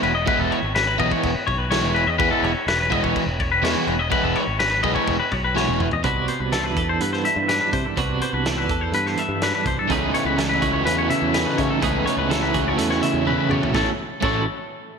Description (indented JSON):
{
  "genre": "math rock and midwest emo",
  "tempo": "125 BPM",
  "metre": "4/4",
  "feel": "straight",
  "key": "A lydian",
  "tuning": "A4 = 439 Hz",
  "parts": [
    { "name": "twangy electric guitar", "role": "arpeggios", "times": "0.0-14.5 s", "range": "A4 to E5", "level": "-23 LUFS", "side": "left 4 dB", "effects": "slapback echo" },
    { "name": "crunchy overdriven guitar", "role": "riff", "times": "0.0-5.9, 9.9-14.4 s", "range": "C#3 to C#5", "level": "-24 LUFS", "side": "right 1 dB", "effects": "spring reverb, slapback echo" },
    { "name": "picked electric bass", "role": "bass", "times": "0.0-14.4 s", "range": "E1 to C#3", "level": "-27 LUFS", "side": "equal", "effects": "none" },
    { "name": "loose indie drum kit", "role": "drums", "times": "0.0-14.3 s", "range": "crash cymbal, hi-hat, kick drum, snare drum, toms", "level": "-28 LUFS", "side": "equal", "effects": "none" },
    { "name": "twelve-string electric guitar", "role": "accompaniment", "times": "6.0-14.5 s", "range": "G2 to A4", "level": "-25 LUFS", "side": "right 6 dB", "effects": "tremolo" }
  ],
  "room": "moderate concert hall reverb, RT60 2.5 s",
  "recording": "big arena sound",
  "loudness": "-18 LUFS",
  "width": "side -6 dB against mid",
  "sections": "0.0-6.0 A section; 6.0-13.7 B section; 13.7-15.0 C section",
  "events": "drum fill 5.6-6.0, 13.3-13.7",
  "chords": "0.0 Emaj7; 6.0 Cmaj9#11; 9.9 Amaj9#11/C#; 13.7 A6"
}